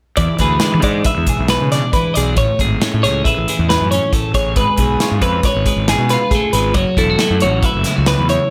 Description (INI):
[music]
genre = math rock and midwest emo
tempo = 137 BPM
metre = 5/4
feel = straight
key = unclear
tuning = A4 = 440 Hz
[part]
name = twelve-string electric guitar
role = accompaniment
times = 0.2-8.5 s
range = A2 to B4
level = -22 LUFS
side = equal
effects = phaser
[part]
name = twelve-string electric guitar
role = arpeggios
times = 0.2-8.5 s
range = G#4 to E5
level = -20 LUFS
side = equal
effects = none
[part]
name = fuzz fingered electric bass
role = bass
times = 0.2-8.4 s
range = E1 to E3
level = -21 LUFS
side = equal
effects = overdrive
[part]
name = modern studio drum kit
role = drums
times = 0.2-8.4 s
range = hi-hat, kick drum, snare drum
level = -21 LUFS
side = equal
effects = none
[sound]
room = light reverb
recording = faint mains hum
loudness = -15 LUFS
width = mono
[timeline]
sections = 0.2-8.5 A section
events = none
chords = 0.2 E7; 2.4 Amaj9; 4.6 C#7/G#; 6.8 F#m7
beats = | 0.19 0.63 1.06 1.50 1.94 | 2.37 2.81 3.25 3.69 4.12 | 4.56 5.00 5.44 5.88 6.32 | 6.75 7.19 7.63 8.07